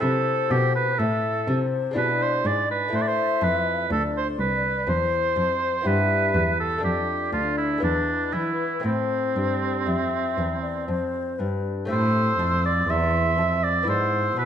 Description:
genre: classical, baroque-style sonata movement with continuo.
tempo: 61 BPM.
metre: 3/4.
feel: straight.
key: A minor.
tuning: A4 = 440 Hz.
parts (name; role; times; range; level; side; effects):
mellow concert flute; melody; 0.0-14.5 s; B4 to E6; -29 LUFS; left 8 dB; none.
warm oboe; second line; 0.0-14.5 s; C4 to E5; -24 LUFS; right 4 dB; none.
lute; accompaniment; 0.0-14.5 s; D2 to G4; -31 LUFS; left 2 dB; none.
warm cello; bass; 0.0-14.5 s; C2 to E3; -27 LUFS; equal; none.
room: wet recital hall reverb, RT60 1.3 s.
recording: nothing above 10.3 kHz.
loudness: -21 LUFS.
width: side -9 dB against mid.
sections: 0.0-11.9 A section; 11.9-14.5 B section.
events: none.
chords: 0.0 Am; 2.0 E7/B; 2.9 Am; 5.8 Em/G; 6.8 Dm/F; 7.8 E7; 8.8 Am; 13.9 E/G#.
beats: | 0.02 0.99 1.96 | 2.93 3.90 4.87 | 5.85 6.83 7.83 | 8.85 9.87 10.89 | 11.90 12.89 13.87.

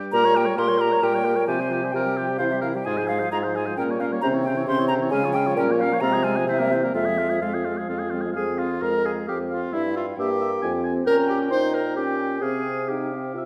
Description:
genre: quick classical-period movement for wind quintet.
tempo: 132 BPM.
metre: 3/4.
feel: straight.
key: F minor.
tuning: A4 = 441 Hz.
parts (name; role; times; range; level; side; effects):
hollow concert flute; melody; 0.1-13.5 s; E5 to C6; -30 LUFS; equal; none.
warm oboe; second line; 0.1-13.5 s; F4 to Ab5; -33 LUFS; equal; none.
clear clarinet; accompaniment; 0.1-13.5 s; Ab3 to C5; -30 LUFS; equal; none.
warm French horn; accompaniment; 0.1-13.5 s; Db3 to F4; -33 LUFS; equal; none.
mellow bassoon; bass; 0.1-13.5 s; F2 to Db3; -27 LUFS; equal; none.
room: wet recital hall reverb, RT60 1.5 s.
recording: none.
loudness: -23 LUFS.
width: mono.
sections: 0.0-8.4 A section; 8.4-13.5 B section.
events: none.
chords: 0.1 Gdim/Bb; 1.5 Csus4; 2.4 C; 2.9 Fm/Ab; 3.8 Gdim/Bb; 4.2 C; 5.1 Db; 5.6 Gm7b5/Bb; 6.0 Fm/C; 6.5 C7; 6.9 Fm; 9.7 Edim/G; 10.6 Fm; 11.1 Gdim/Bb; 12.4 Csus4.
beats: | 0.13 0.58 1.03 | 1.49 1.95 2.41 | 2.87 3.32 3.78 | 4.22 4.67 5.12 | 5.56 6.01 6.47 | 6.95 7.42 7.89 | 8.36 8.82 9.28 | 9.73 10.18 10.62 | 11.07 11.51 11.96 | 12.42 12.89 13.35.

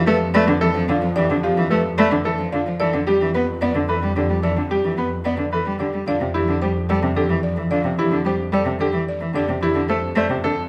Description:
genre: classical, minimalist pattern music.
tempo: 110 BPM.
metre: 3/4.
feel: straight.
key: unclear.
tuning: A4 = 440 Hz.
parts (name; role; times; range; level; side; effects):
rich cello; accompaniment; 0.0-10.5 s; C3 to B3; -24 LUFS; equal; none.
rich studio double bass section; bass; 0.0-10.7 s; F2; -28 LUFS; equal; none.
buzzing marimba with medium hard mallets; melody; 0.1-10.6 s; G4 to D5; -27 LUFS; equal; none.
bright baby grand piano; arpeggios; 0.1-10.6 s; E4 to D5; -27 LUFS; equal; none.
room: moderate recital hall reverb, RT60 1.4 s.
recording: close, detailed microphones.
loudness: -20 LUFS.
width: mono.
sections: 0.0-10.7 A section.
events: none.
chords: 0.0 G9/F; 6.1 F69.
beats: 0.07 0.62 | 1.16 1.71 2.25 | 2.80 3.34 3.89 | 4.43 4.98 5.53 | 6.07 6.62 7.16 | 7.71 8.25 8.80 | 9.34 9.89 10.44.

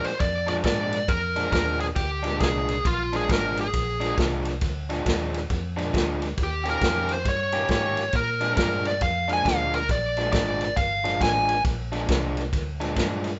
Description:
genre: electric blues shuffle.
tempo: 136 BPM.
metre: 4/4.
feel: swing 63% on 8ths.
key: Bb mixolydian.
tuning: A4 = 439 Hz.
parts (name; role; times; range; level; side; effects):
smooth overdriven lead guitar; melody; 0.0-11.6 s; F4 to Ab5; -28 LUFS; equal; none.
overdriven electric guitar; riff; 0.0-13.3 s; Bb2 to G4; -31 LUFS; equal; none.
vintage muted fingered electric bass; bass; 0.0-13.4 s; G1 to Bb2; -33 LUFS; equal; none.
vintage drum kit; drums; 0.0-13.3 s; kick drum, ride cymbal, snare drum; -30 LUFS; equal; none.
room: moderate studio ambience, RT60 0.5 s.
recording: band playing live in one room, nothing above 7.8 kHz.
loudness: -25 LUFS.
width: mono.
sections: 0.0-13.4 A section.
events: none.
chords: 0.0 Bb7; 6.4 Eb7; 8.1 Bb7.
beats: 0.21 0.65 | 1.09 1.53 1.97 2.41 | 2.85 3.29 3.73 4.17 | 4.61 5.05 5.49 5.93 | 6.37 6.81 7.25 7.69 | 8.13 8.57 9.01 9.45 | 9.89 10.32 10.77 11.20 | 11.64 12.08 12.52 12.96.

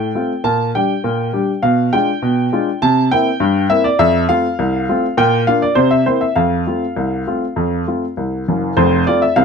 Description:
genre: ragtime piano.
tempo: 101 BPM.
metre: 2/4.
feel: straight.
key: F major.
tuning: A4 = 438 Hz.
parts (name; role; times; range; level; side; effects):
warm upright piano; solo; 0.0-9.4 s; F1 to A5; -14 LUFS; equal; none.
room: moderate studio reverb, RT60 0.6 s.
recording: close, detailed microphones.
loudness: -14 LUFS.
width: side -6 dB against mid.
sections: 0.0-8.8 A section.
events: none.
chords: 0.4 Gm/Bb; 1.6 Bdim7; 2.8 C7; 4.0 F; 5.2 Bb; 5.8 C7; 6.4 F.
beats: | 0.45 1.04 | 1.63 2.22 | 2.81 3.40 | 3.99 4.58 | 5.18 5.77 | 6.37 6.97 | 7.58 8.18 | 8.77 9.37.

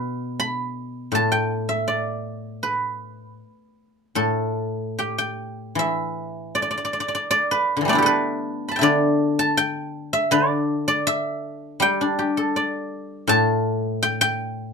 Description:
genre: chinese traditional, Chinese solo plucked strings.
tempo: 80 BPM.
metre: 4/4.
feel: rubato.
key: G gong mode.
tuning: A4 = 440 Hz.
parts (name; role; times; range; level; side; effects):
guzheng; solo; 0.0-14.7 s; A2 to B5; -20 LUFS; equal; none.
room: light reverb.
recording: minimal, uncompressed stereo recording.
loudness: -20 LUFS.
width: side -5 dB against mid.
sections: 0.0-5.8 A section; 5.8-14.7 B section.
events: none.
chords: none.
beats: 0.38 1.12 1.88 | 2.64 3.40 4.17 4.98 | 5.78 6.55 7.32 8.08 | 8.84 9.58 10.32 11.07 | 11.80 12.54 13.28 14.03.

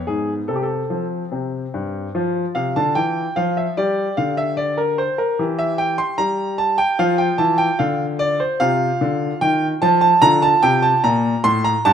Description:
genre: classical-period piano sonatina.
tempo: 74 BPM.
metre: 2/4.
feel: straight.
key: F major, Bb major from 8.6 s.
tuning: A4 = 440 Hz.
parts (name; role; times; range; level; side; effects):
bright grand piano; solo; 0.0-11.9 s; G2 to C6; -16 LUFS; equal; none.
room: moderate large studio reverb, RT60 1.3 s.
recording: dark, warm production.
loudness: -16 LUFS.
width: side -8 dB against mid.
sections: 0.0-2.1 A section; 2.1-11.9 B section.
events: none.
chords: 0.5 F/C; 1.3 C5; 2.1 F5; 3.8 G5; 5.4 Edim; 7.0 Dm11; 8.6 F5/C; 10.2 Bb.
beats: | 0.48 1.32 | 2.15 2.96 | 3.76 4.57 | 5.38 6.19 | 6.98 7.79 | 8.60 9.41 | 10.22 11.03 | 11.85.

